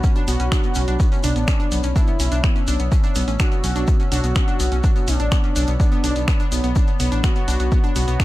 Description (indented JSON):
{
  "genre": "melodic techno",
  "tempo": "125 BPM",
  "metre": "4/4",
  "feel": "straight",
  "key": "B minor",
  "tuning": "A4 = 440 Hz",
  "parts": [
    { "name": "fat analog lead", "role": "melody", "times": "0.0-8.2 s", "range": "D4 to F#4", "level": "-28 LUFS", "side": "equal", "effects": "sidechain pumping, ping-pong delay" },
    { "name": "dark analog pad", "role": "sustained chords", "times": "0.0-8.2 s", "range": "B3 to E6", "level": "-31 LUFS", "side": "equal", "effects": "chorus, sidechain pumping" },
    { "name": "analog pluck", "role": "arpeggios", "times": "0.0-8.2 s", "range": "B3 to D4", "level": "-27 LUFS", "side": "equal", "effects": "chorus, sidechain pumping, digital delay" },
    { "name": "electronic kick drum", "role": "drums", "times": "0.0-8.2 s", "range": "none", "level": "-18 LUFS", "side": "equal", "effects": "overdrive" },
    { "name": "punchy analog drum machine", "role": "drums", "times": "0.0-8.2 s", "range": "finger snaps, hi-hat", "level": "-28 LUFS", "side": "right 1 dB", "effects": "none" },
    { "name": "shekere", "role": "percussion", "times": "0.0-8.2 s", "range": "none", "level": "-35 LUFS", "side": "left 5 dB", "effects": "none" },
    { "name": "dark detuned saw bass", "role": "bass", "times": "0.3-8.2 s", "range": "A1 to B1", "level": "-21 LUFS", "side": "equal", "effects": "sidechain pumping" }
  ],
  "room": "digital ambience",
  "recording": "dark, warm production",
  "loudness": "-17 LUFS",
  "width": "side -17 dB against mid",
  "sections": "0.0-8.2 A section",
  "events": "none",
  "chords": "0.0 Bmadd9",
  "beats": "| 0.04 0.52 1.00 1.48 | 1.96 2.44 2.92 3.40 | 3.88 4.36 4.84 5.32 | 5.80 6.28 6.76 7.24 | 7.72 8.20"
}